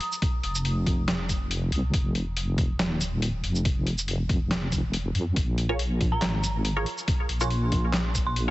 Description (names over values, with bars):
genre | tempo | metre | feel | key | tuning
deep dubstep | 140 BPM | 4/4 | swing 54% on 16ths, half-time | F minor | A4 = 441 Hz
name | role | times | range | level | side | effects
dark detuned synth bell | melody | 0.0-0.1, 6.1-8.5 s | Bb5 to Eb6 | -35 LUFS | right 2 dB | chorus, dub echo
trip hop sampler-style drum kit | drums | 0.0-8.5 s | handclaps, hi-hat, shaker, snare drum | -30 LUFS | equal | none
electronic kick drum | drums | 0.2-8.2 s | none | -26 LUFS | equal | none
deep soft wobble bass | bass | 0.4-8.5 s | Eb1 to F2 | -27 LUFS | equal | chorus
filtered dub chord stab | stabs | 5.7-8.5 s | F4 to Db5 | -33 LUFS | right 1 dB | phaser, dub echo
room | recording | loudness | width
little or no reverb | heavily compressed radio sound, nothing above 8.0 kHz | -24 LUFS | side -17 dB against mid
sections
0.0-8.5 A section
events
none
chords
0.0 F5; 5.4 Bbm7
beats
| 0.22 0.65 1.08 1.51 | 1.94 2.36 2.79 3.22 | 3.65 4.08 4.51 4.94 | 5.36 5.79 6.22 6.65 | 7.08 7.51 7.94 8.36